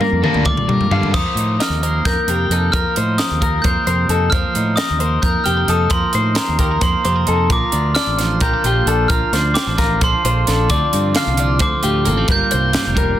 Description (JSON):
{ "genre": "math rock and midwest emo", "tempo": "264 BPM (eighths)", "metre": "7/8", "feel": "straight", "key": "unclear", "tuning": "A4 = 438 Hz", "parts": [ { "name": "twelve-string electric guitar", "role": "accompaniment", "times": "0.0-13.2 s", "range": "G2 to D5", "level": "-23 LUFS", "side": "right 5 dB", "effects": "none" }, { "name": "electric guitar at the edge of break-up", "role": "arpeggios", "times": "0.0-13.2 s", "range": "G4 to F5", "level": "-22 LUFS", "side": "left 6 dB", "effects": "plate reverb, digital delay" }, { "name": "crunchy overdriven guitar", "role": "riff", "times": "0.0-1.2 s", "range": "D3 to D4", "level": "-22 LUFS", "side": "right 1 dB", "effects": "none" }, { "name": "crisp fusion drum kit", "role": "drums", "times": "0.0-13.1 s", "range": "crash cymbal, hi-hat, kick drum, snare drum, toms", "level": "-20 LUFS", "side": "equal", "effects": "none" }, { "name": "growling fingered electric bass", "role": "bass", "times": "0.1-13.2 s", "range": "F1 to G3", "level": "-20 LUFS", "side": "equal", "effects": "overdrive" }, { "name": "glockenspiel with soft plastic mallets", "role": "melody", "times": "0.5-13.2 s", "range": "Bb5 to G6", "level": "-20 LUFS", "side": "right 1 dB", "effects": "plate reverb" } ], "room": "light reverb", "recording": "dense, heavily limited modern master", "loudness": "-14 LUFS", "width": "side -12 dB against mid", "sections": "0.0-1.1 A section; 1.1-13.2 B section", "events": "drum fill 0.0-1.1", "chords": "0.0 Gm9; 1.1 F7sus4; 7.5 Bbmaj9; 12.3 Gm11" }